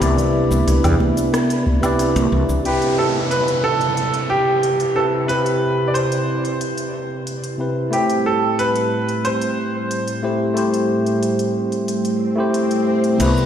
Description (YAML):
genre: sunset chillout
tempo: 91 BPM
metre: 4/4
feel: straight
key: C major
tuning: A4 = 441 Hz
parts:
  - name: bright tine electric piano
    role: accompaniment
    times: 0.0-13.5 s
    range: C3 to D5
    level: -20 LUFS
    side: equal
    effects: auto-pan, tape echo
  - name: lush unison pad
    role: sustained chords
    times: 0.0-13.5 s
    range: A2 to B4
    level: -26 LUFS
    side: equal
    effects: chorus
  - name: buzzing kalimba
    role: arpeggios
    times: 0.0-2.3, 13.2-13.4 s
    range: B3 to C4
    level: -26 LUFS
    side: left 2 dB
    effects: tape echo
  - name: woody fretless electric bass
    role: bass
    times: 0.0-2.6, 13.2-13.5 s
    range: C2 to E2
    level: -18 LUFS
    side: equal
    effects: none
  - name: deep house drum kit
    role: drums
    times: 0.0-13.5 s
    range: cabasa, crash cymbal, hi-hat, rim click, woodblock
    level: -29 LUFS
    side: equal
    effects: studio reverb
  - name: electronic kick drum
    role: drums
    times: 0.0-2.3, 13.2-13.3 s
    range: none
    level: -22 LUFS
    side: equal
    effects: studio reverb
  - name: congas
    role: percussion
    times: 0.0-2.5 s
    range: none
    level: -26 LUFS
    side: right 3 dB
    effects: none
  - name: clear baby grand piano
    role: melody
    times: 2.7-12.5 s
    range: G4 to D5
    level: -21 LUFS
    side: right 2 dB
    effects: tape echo
  - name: downlifter and swell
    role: sound effects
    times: 2.7-13.2 s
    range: none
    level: -28 LUFS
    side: equal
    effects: none
room: moderate lush hall reverb, RT60 2.2 s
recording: played on a big sound system in a bare room, stone room reverb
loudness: -16 LUFS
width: side -9 dB against mid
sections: 0.0-2.7 A section; 2.7-13.2 B section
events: filter sweep on analog synth pad 2.7-13.2; swell 12.1-13.2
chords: 0.0 Cmaj9; 2.7 Cmaj7; 7.9 Am7